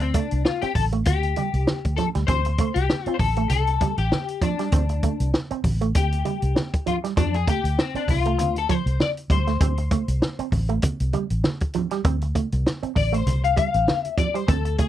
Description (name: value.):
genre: funk.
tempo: 98 BPM.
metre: 4/4.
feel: swing 56% on 16ths.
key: D minor.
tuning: A4 = 440 Hz.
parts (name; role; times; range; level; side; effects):
clean electric guitar; accompaniment; 0.0-14.9 s; C4 to F5; -26 LUFS; left 8 dB; ensemble chorus.
electric guitar with an envelope filter; riff; 0.0-14.9 s; F3 to C4; -27 LUFS; right 9 dB; wide subtle chorus.
vintage muted fingered electric bass; bass; 0.0-14.8 s; A1 to F2; -23 LUFS; equal; none.
compact cocktail drum kit; drums; 0.0-14.9 s; hi-hat, kick drum, snare drum; -24 LUFS; equal; none.
congas; percussion; 0.0-14.9 s; none; -31 LUFS; right 3 dB; none.
room: little or no reverb.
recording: dry, close 1970s-style studio recording.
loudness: -20 LUFS.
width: side -12 dB against mid.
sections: 0.0-14.9 A section.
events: clean electric guitar solo 0.0-14.9.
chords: 0.0 D7(no3); 7.2 F6; 9.6 Dm7.